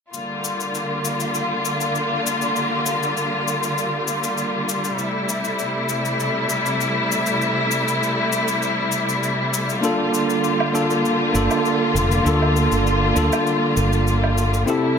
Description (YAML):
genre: sunset chillout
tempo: 99 BPM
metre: 4/4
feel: straight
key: G dorian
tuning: A4 = 439 Hz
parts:
  - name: warm studio string section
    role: sustained chords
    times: 0.1-15.0 s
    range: C3 to F4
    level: -20 LUFS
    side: left 1 dB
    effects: none
  - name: cabasa and woodblock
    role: drums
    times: 0.1-14.8 s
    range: none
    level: -28 LUFS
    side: left 2 dB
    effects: none
  - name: bell-like tine electric piano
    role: accompaniment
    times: 9.8-15.0 s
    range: Bb3 to A4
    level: -20 LUFS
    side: moving between left 3 dB and right 4 dB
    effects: auto-pan, digital delay
  - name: mellow fretless electric bass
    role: bass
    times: 11.3-14.6 s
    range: F1 to D2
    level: -20 LUFS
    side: equal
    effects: ensemble chorus
room: moderate digital room reverb, RT60 1.1 s, small room ambience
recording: none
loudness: -18 LUFS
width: side -6 dB against mid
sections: 0.1-15.0 A section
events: none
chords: 0.1 Gm7; 5.0 Am7; 9.8 Gm7